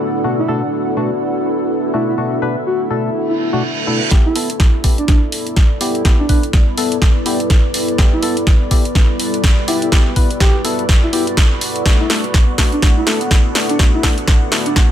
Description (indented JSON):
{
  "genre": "bass house",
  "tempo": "124 BPM",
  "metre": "4/4",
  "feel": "swing 59% on 16ths",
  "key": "E minor",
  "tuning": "A4 = 440 Hz",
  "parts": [
    { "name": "deep dark ambient pad", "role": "sustained chords", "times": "0.0-14.9 s", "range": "G3 to B4", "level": "-23 LUFS", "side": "equal", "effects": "chorus, built-in reverb, vintage 12-bit sampler grit, sidechain pumping" },
    { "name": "airy breathy pad", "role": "texture", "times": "0.0-14.9 s", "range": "B3 to F#5", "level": "-24 LUFS", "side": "equal", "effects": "chorus, sidechain pumping" },
    { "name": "percussive organ stab", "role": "stabs", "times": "0.2-14.9 s", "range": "B2 to B4", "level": "-23 LUFS", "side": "left 3 dB", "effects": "chorus, sidechain pumping, dub echo" },
    { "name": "breathy flute-like synth lead", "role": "melody", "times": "0.4-14.7 s", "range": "D4 to G4", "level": "-22 LUFS", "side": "right 1 dB", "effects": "chorus, dub echo" },
    { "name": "reverse cymbal", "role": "sound effects", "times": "3.4-4.1 s", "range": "none", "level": "-21 LUFS", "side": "right 7 dB", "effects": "none" },
    { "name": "big-room dance drum kit", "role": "drums", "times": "4.1-14.9 s", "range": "hi-hat, snare drum", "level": "-20 LUFS", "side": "equal", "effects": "high-pass filter on snare, high-pass filter on hats" },
    { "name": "electronic kick drum", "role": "drums", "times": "4.1-14.9 s", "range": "none", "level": "-12 LUFS", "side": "equal", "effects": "none" }
  ],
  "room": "light reverb",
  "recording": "none",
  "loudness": "-12 LUFS",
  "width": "side -11 dB against mid",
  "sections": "0.0-4.1 A section; 4.1-14.9 B section",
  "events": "filter sweep on ambient pad 0.0-4.1; reverse cymbal 3.4-4.1; build-up 4.1-14.9; drum fill 4.1-14.9; filter sweep on synth stab 4.1-14.9",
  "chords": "0.0 Bm7; 4.1 Em; 11.9 Bm7"
}